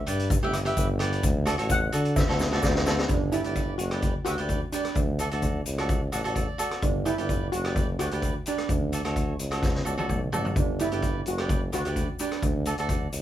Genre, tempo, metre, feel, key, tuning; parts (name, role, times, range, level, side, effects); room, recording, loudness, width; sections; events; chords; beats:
calypso; 128 BPM; 4/4; swing 53% on 16ths; A4 = 436 Hz
steel pan; melody; 0.0-12.6 s; D4 to F#5; -32 LUFS; right 3 dB
warm tuba; bass; 0.0-13.2 s; F#1 to D3; -29 LUFS; equal
cavaquinho; accompaniment; 0.1-13.1 s; F#4 to F#5; -32 LUFS; right 2 dB
street-band drum kit; drums; 0.1-13.2 s; hi-hat, kick drum, rim click, snare drum, toms; -28 LUFS; equal
tube shaker; percussion; 0.1-13.2 s; -40 LUFS; left 8 dB
light reverb; band playing live in one room; -24 LUFS; side -12 dB against mid
0.0-3.1 A section; 3.1-13.2 B section
steel pan solo 0.0-3.1; drum fill 2.2-3.1, 9.6-10.6; cavaquinho fill 5.9-6.8
0.0 G; 1.2 Dmaj7; 3.1 Gmaj7; 5.0 Dmaj7; 6.8 Gmaj7; 8.7 Dmaj7; 10.6 Gmaj7; 12.4 D
0.31 0.77 | 1.24 1.70 2.17 2.63 | 3.10 3.56 4.03 4.50 | 4.96 5.43 5.90 6.36 | 6.83 7.30 7.76 8.23 | 8.70 9.16 9.63 10.10 | 10.56 11.03 11.50 11.96 | 12.43 12.90